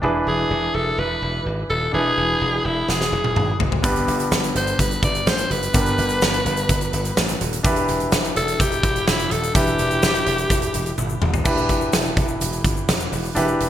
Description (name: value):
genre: 1980s-style pop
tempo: 126 BPM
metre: 4/4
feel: straight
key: unclear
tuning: A4 = 440 Hz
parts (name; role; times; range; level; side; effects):
- warm concert grand piano; accompaniment; 0.0-13.7 s; G2 to B4; -24 LUFS; equal; none
- glassy slap bass; bass; 0.0-13.7 s; D#1 to A1; -26 LUFS; equal; none
- raspy alto saxophone; melody; 0.3-10.9 s; E4 to D5; -23 LUFS; left 1 dB; digital delay
- huge arena drum kit; drums; 2.9-13.7 s; crash cymbal, hi-hat, kick drum, snare drum, toms; -21 LUFS; equal; gated reverb
- egg shaker; percussion; 3.8-13.6 s; none; -35 LUFS; left 11 dB; none
room: moderate plate reverb, RT60 1.3 s, studio reverb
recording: bright 1980s-style digital production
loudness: -18 LUFS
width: side -11 dB against mid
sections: 0.0-11.5 A section; 11.5-13.7 B section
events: drum fill 2.9-3.8, 11.0-11.5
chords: 0.0 E7; 3.8 G; 7.6 Em7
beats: | 0.03 0.50 0.98 1.46 | 1.93 2.41 2.88 3.36 | 3.84 4.31 4.79 5.27 | 5.74 6.22 6.69 7.17 | 7.65 8.12 8.60 9.07 | 9.55 10.03 10.50 10.98 | 11.46 11.93 12.41 12.88 | 13.36